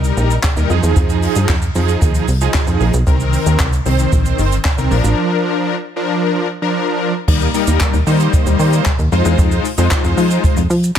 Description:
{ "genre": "dance-pop", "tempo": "114 BPM", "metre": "4/4", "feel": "straight", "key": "Eb major", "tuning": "A4 = 443 Hz", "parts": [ { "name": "big bright polysynth", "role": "accompaniment", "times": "0.0-11.0 s", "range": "Eb3 to C5", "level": "-17 LUFS", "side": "left 1 dB", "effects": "chorus, sidechain pumping" }, { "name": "plucky analog bass", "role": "bass", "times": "0.0-10.9 s", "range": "G1 to F3", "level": "-15 LUFS", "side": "equal", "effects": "sidechain pumping" }, { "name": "jazz brush drum kit", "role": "drums", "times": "0.0-11.0 s", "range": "crash cymbal, handclaps, hi-hat, kick drum, shaker, snare drum", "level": "-17 LUFS", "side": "equal", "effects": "none" } ], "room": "studio reverb", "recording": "none", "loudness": "-13 LUFS", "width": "side -9 dB against mid", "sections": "0.0-7.3 A section; 7.3-11.0 B section", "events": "break 5.2-7.3", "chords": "0.0 Eb; 0.7 Fm7; 3.1 Cm7; 4.9 Bb; 7.3 Eb; 9.1 Fm7", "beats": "0.44 | 0.96 1.49 2.02 2.54 | 3.07 3.60 4.12 4.65 | 5.17 5.70 6.23 6.75 | 7.28 7.81 8.33 8.86 | 9.38 9.91 10.44 10.96" }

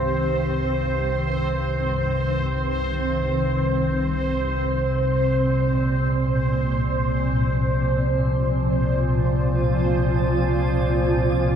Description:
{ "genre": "dark ambient drone", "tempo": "free time", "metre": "none", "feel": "none", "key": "unclear", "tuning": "A4 = 440 Hz", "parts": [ { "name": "granular cloud pad", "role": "sustained chords", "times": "0.0-11.6 s", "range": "G2 to G4", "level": "-25 LUFS", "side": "equal", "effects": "built-in reverb, shimmer reverb" }, { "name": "deep rumbling drone", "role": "drone", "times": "0.0-11.6 s", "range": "C2 to C3", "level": "-23 LUFS", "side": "equal", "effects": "built-in reverb" }, { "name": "bubbling stepped-filter texture", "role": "texture", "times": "0.0-11.6 s", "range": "C5", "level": "-26 LUFS", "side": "right 1 dB", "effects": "chorus, built-in reverb, shimmer reverb" } ], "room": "wet huge ambient reverb, RT60 8.4 s", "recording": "dark, warm production", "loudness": "-20 LUFS", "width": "side -8 dB against mid", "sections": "0.0-11.6 A section", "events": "none", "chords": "0.0 Cm; 3.9 Fsus4", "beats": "free time" }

